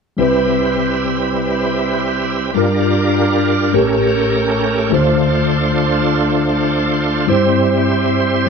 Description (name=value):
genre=slow gospel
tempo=51 BPM (dotted quarters)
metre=6/8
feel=straight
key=C major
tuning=A4 = 442 Hz
part: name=mellow tine electric piano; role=accompaniment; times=0.2-8.5 s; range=A1 to C5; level=-16 LUFS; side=left 2 dB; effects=medium stereo tremolo
part: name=bright tonewheel organ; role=sustained chords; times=0.2-8.5 s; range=G3 to C5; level=-16 LUFS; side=right 3 dB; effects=slow rotary speaker, chorus vibrato
room=moderate large studio reverb, RT60 1.1 s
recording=band playing live in one room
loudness=-13 LUFS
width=side -5 dB against mid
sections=0.2-8.5 A section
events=none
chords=0.2 Cmaj7; 2.5 Gm7; 3.7 A7b9; 4.9 Dm7; 7.3 C/G